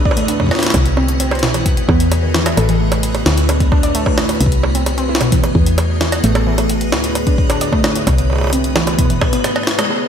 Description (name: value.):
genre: IDM.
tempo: 131 BPM.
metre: 4/4.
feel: straight.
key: unclear.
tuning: A4 = 440 Hz.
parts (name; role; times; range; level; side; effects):
icy glass pad; sustained chords; 0.0-10.1 s; A3 to C#5; -22 LUFS; equal; chorus, built-in reverb.
warbly dusty pluck; arpeggios; 0.0-10.0 s; B2 to D5; -20 LUFS; right 1 dB; chorus, phaser, cassette tape, digital delay.
woody FM bass; bass; 0.0-9.9 s; A1 to G#2; -18 LUFS; left 1 dB; tube saturation.
backwards swelling texture; texture; 0.0-10.1 s; B3 to B4; -25 LUFS; right 1 dB; built-in reverb.
electronic kick drum; drums; 0.1-9.3 s; none; -16 LUFS; left 1 dB; none.
jungle sampler-style drum kit; drums; 0.1-10.0 s; bongos, cowbell, hi-hat, rim click, snare drum; -19 LUFS; right 1 dB; low-pass filter on perc, low-pass filter on hats, low-pass filter on snare, low-pass filter on room, gated reverb, digital delay.
room: moderate lush hall reverb, RT60 1.6 s.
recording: bright 1980s-style digital production.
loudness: -13 LUFS.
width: side -8 dB against mid.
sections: 0.0-9.9 A section.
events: drum fill 9.2-9.9; band accent 9.8.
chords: 0.0 Dmaj9; 0.7 Cmaj9; 1.4 Emaj9; 2.6 Amaj9; 3.3 Dmaj9; 4.4 Cmaj9; 5.1 Emaj9; 6.2 Amaj9; 6.9 Dmaj9; 8.1 Cmaj9; 8.8 Emaj9.